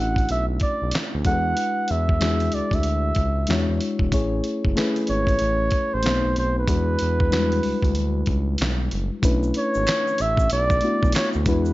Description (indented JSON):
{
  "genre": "R&B, neo-soul",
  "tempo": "94 BPM",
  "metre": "4/4",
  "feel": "swing 62% on 16ths",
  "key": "B dorian",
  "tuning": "A4 = 440 Hz",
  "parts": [
    { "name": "warm flugelhorn", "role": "melody", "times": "0.0-11.7 s", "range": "B4 to F#5", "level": "-24 LUFS", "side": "right 1 dB", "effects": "slapback echo" },
    { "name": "reed electric piano", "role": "accompaniment", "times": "0.0-11.7 s", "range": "G3 to C#5", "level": "-25 LUFS", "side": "left 2 dB", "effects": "none" },
    { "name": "smooth synth bass", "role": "bass", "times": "0.0-11.7 s", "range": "E1 to E2", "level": "-24 LUFS", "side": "equal", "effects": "none" },
    { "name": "dusty soul sampler-style drum kit", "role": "drums", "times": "0.2-11.6 s", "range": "handclaps, hi-hat, kick drum, snare drum", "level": "-24 LUFS", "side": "equal", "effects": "none" },
    { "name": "tube shaker and finger snaps", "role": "percussion", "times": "9.2-11.7 s", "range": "none", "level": "-39 LUFS", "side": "right 5 dB", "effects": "none" }
  ],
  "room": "light reverb, studio reverb",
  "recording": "nothing above 7.6 kHz",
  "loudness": "-19 LUFS",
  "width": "side -17 dB against mid",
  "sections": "0.0-9.2 A section; 9.2-11.7 B section",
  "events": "none",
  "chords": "0.0 Bm11; 1.2 E9; 3.5 E13; 4.1 Amaj7; 6.0 B7b9; 6.7 E9; 9.2 Bm11"
}